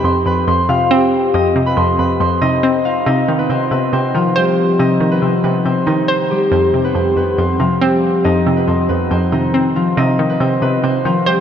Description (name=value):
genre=hip hop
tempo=139 BPM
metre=4/4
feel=half-time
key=C harmonic minor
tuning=A4 = 443 Hz
part: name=concert harp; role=melody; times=0.0-11.4 s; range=Eb3 to Eb6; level=-15 LUFS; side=left 1 dB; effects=low-pass filter, diffuse ambient delay
part: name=hollow square pluck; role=accompaniment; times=0.0-11.4 s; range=F2 to C5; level=-16 LUFS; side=right 1 dB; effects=chorus, low-pass filter
room=wet huge ambient reverb, RT60 4.7 s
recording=dreamy mix soaked in reverb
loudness=-13 LUFS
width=side -8 dB against mid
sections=0.0-3.1 A section; 3.1-10.0 B section; 10.0-11.4 C section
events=none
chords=0.0 F5; 3.1 Cm; 6.5 F5; 10.0 Cm